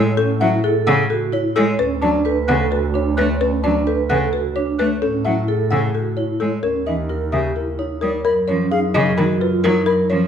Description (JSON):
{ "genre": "classical, minimalist pattern music", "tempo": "260 BPM (eighths)", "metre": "7/8", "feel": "straight", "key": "A major", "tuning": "A4 = 440 Hz", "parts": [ { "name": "folk marimba with medium mallets", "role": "melody", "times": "0.0-10.3 s", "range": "G4 to F#5", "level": "-21 LUFS", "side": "left 5 dB", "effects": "none" }, { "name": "rich cello", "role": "accompaniment", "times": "0.0-10.3 s", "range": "C#3 to A3", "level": "-22 LUFS", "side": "equal", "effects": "none" }, { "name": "mellow concert flute", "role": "arpeggios", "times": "0.0-10.0 s", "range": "E5 to F#6", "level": "-28 LUFS", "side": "left 2 dB", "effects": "none" }, { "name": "vibraphone with medium mallets", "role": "arpeggios", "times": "0.0-10.3 s", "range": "C#4 to C#5", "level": "-22 LUFS", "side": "right 5 dB", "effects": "none" }, { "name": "rich double bass", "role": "bass", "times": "0.0-10.3 s", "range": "D2 to A2", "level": "-23 LUFS", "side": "right 1 dB", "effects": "none" } ], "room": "moderate large studio reverb, RT60 1.1 s", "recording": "heard from further back in the room", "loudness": "-16 LUFS", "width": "side -8 dB against mid", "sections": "0.0-8.3 A section; 8.3-10.3 B section", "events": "none", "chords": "0.0 Amaj7; 1.8 D6; 5.0 Amaj7; 6.6 D#7b9; 8.3 G#m11/F#", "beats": "| 0.17 0.41 0.64 0.87 1.10 1.33 1.56 | 1.79 2.02 2.25 2.48 2.71 2.94 3.17 | 3.40 3.64 3.87 4.10 4.33 4.56 4.79 | 5.02 5.25 5.48 5.71 5.94 6.17 6.41 | 6.64 6.87 7.10 7.33 7.56 7.79 8.02 | 8.25 8.48 8.71 8.94 9.18 9.40 9.64 | 9.87 10.10" }